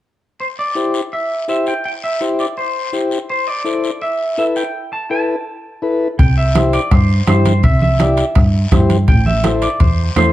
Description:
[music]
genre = latin, cumbia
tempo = 166 BPM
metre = 4/4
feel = straight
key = C major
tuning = A4 = 440 Hz
[part]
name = clean electric guitar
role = melody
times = 0.4-10.3 s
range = C5 to A5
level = -20 LUFS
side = right 1 dB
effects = spring reverb, slapback echo
[part]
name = guiro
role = percussion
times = 0.4-10.3 s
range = none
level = -32 LUFS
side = left 5 dB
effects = none
[part]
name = overdriven combo organ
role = accompaniment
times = 0.8-10.3 s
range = E4 to D5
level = -20 LUFS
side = left 3 dB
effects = spring reverb
[part]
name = hollow-body short-scale fingered electric bass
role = bass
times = 6.2-10.3 s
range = A1 to G2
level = -14 LUFS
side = right 1 dB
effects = none
[part]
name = bombo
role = percussion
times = 6.2-10.3 s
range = none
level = -14 LUFS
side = equal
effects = none
[part]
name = congas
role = percussion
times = 6.2-10.3 s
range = none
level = -20 LUFS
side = right 3 dB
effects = none
[part]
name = timbales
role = percussion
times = 6.2-10.3 s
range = none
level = -26 LUFS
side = right 6 dB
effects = none
[sound]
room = moderate studio ambience, RT60 0.5 s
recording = dark, warm production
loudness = -13 LUFS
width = side -14 dB against mid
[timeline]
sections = 0.4-6.2 A section; 6.2-10.3 B section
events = none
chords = 0.4 C; 3.3 A5; 6.2 C; 9.1 Am

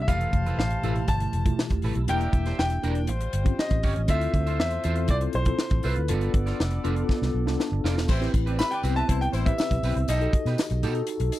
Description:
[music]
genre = polished 1980s jazz-funk pop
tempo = 120 BPM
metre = 4/4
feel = straight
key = unclear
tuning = A4 = 440 Hz
[part]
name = clear grand piano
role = melody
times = 0.0-10.8 s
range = B4 to B5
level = -30 LUFS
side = left 1 dB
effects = none
[part]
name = mellow tine electric piano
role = accompaniment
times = 0.0-11.4 s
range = B2 to A5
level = -31 LUFS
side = left 2 dB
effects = medium stereo tremolo, wide subtle chorus
[part]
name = vintage muted fingered electric bass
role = bass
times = 0.0-11.3 s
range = E1 to B2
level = -26 LUFS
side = equal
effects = none
[part]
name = clear horn section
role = second line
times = 0.1-9.5 s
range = E3 to A5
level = -38 LUFS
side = left 3 dB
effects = none
[part]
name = electric guitar at the edge of break-up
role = riff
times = 0.1-11.2 s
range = C4 to E5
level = -36 LUFS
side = right 6 dB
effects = analog chorus
[part]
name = crisp fusion drum kit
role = drums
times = 0.1-11.4 s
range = crash cymbal, hi-hat, kick drum, snare drum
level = -26 LUFS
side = equal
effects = none
[part]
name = tambourine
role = percussion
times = 8.1-11.4 s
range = none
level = -45 LUFS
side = left 10 dB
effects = none
[sound]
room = little or no reverb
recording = dry, close 1970s-style studio recording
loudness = -22 LUFS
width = side -15 dB against mid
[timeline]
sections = 0.0-8.1 A section; 8.1-11.4 B section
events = drum fill 7.1-8.1; tine electric piano fill 7.3-8.1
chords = 0.1 Fmaj9#11; 2.1 Em7b5; 3.1 A7alt; 4.1 Dm9; 6.1 G9; 8.1 Am9; 10.1 B7b13

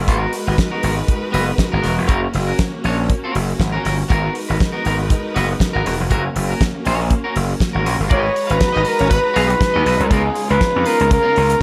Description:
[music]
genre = disco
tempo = 120 BPM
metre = 4/4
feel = swing 56% on 16ths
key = G# dorian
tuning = A4 = 440 Hz
[part]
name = clear studio string section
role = sustained chords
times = 0.0-11.6 s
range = C#3 to A#5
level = -28 LUFS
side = equal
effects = none
[part]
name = gritty slap bass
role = bass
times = 0.0-11.5 s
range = E1 to E#2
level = -21 LUFS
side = equal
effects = overdrive
[part]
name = clean electric guitar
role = accompaniment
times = 0.1-11.6 s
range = B3 to E#5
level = -26 LUFS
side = equal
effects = none
[part]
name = damped 70s drum kit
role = drums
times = 0.1-11.6 s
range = hi-hat, kick drum, snare drum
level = -22 LUFS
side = equal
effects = gated reverb
[part]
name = warm flugelhorn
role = melody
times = 8.1-11.6 s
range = G#4 to C#5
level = -19 LUFS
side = equal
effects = slapback echo
[part]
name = mellow horn section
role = stabs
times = 8.5-9.6 s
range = G#3 to D#5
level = -27 LUFS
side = equal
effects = none
[sound]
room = light reverb, small room ambience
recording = none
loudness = -18 LUFS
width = mono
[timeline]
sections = 0.0-8.1 A section; 8.1-11.6 B section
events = none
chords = 0.1 G#m9; 2.1 F#; 4.1 G#m9; 6.1 F#; 8.1 G#m7; 10.1 C#13

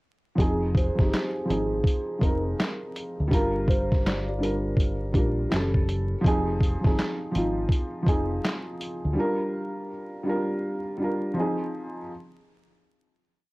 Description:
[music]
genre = lo-fi hip hop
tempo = 82 BPM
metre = 4/4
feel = swing 63% on 16ths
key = F dorian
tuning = A4 = 440 Hz
[part]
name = kalimba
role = melody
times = 0.4-6.2 s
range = G4 to D5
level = -33 LUFS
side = equal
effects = cassette tape
[part]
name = felt-muted upright piano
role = accompaniment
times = 0.4-12.1 s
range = Fb3 to Bb4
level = -28 LUFS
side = equal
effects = cassette tape
[part]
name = deep dub fingered electric bass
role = bass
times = 0.4-9.2 s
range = F1 to D2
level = -29 LUFS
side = equal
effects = none
[part]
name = lo-fi sampler-style drum kit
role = drums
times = 0.4-9.0 s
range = handclaps, hi-hat, kick drum, snare drum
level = -24 LUFS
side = equal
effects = cassette tape
[sound]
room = light reverb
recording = home recording on cassette, vinyl crackle, lossy compression artefacts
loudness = -23 LUFS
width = side -22 dB against mid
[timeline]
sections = 0.4-12.1 A section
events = none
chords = 0.4 Fm7; 3.3 Gm7; 5.5 Gbm7; 6.2 Fm7; 9.2 Gm7; 11.4 Fm7

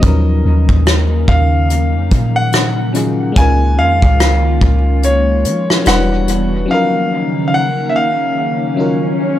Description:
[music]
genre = contemporary R&B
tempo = 72 BPM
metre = 4/4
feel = swing 58% on 16ths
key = unclear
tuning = A4 = 439 Hz
[part]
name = clear concert grand piano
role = melody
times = 0.0-9.4 s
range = Db5 to Ab5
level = -18 LUFS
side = equal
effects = dub echo
[part]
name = FM electric piano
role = accompaniment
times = 0.0-9.4 s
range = F3 to B4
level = -19 LUFS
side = left 4 dB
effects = chorus, dub echo
[part]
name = hollow soft pad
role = sustained chords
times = 0.0-9.4 s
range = Db3 to F#4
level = -21 LUFS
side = equal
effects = ensemble chorus
[part]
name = clean 808-style bass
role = bass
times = 0.0-6.7 s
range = E1 to F3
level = -14 LUFS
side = equal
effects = none
[part]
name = soft brush drum kit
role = drums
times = 0.0-6.5 s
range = hi-hat, kick drum, rim click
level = -16 LUFS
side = equal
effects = dub echo
[part]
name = swell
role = sound effects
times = 8.3-9.4 s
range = none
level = -22 LUFS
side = left 1 dB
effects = none
[sound]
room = light reverb, small room reverb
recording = echo-heavy mix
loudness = -11 LUFS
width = side -12 dB against mid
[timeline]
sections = 0.0-9.4 A section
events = break 6.7-9.4; swell 8.3-9.4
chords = 0.0 Ebm9; 3.4 Db69; 5.9 Em9; 6.7 Ebm9

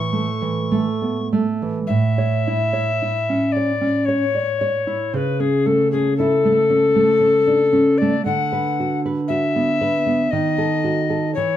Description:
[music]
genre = romantic duo for recorder and classical guitar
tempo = 57 BPM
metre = 3/4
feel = uneven beats, rubato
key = A major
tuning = A4 = 440 Hz
[part]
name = alto recorder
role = melody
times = 0.0-11.6 s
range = G#4 to C#6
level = -19 LUFS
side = left 4 dB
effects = none
[part]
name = nylon-string guitar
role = accompaniment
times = 0.0-11.6 s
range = A2 to D5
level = -20 LUFS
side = right 2 dB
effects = none
[sound]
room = wet small room reverb, RT60 0.5 s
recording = heard from further back in the room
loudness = -17 LUFS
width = side -11 dB against mid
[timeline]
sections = 0.0-1.9 A section; 1.9-11.6 B section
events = none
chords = 0.0 A; 5.1 A/C#; 8.2 Bm/D; 10.3 D#dim

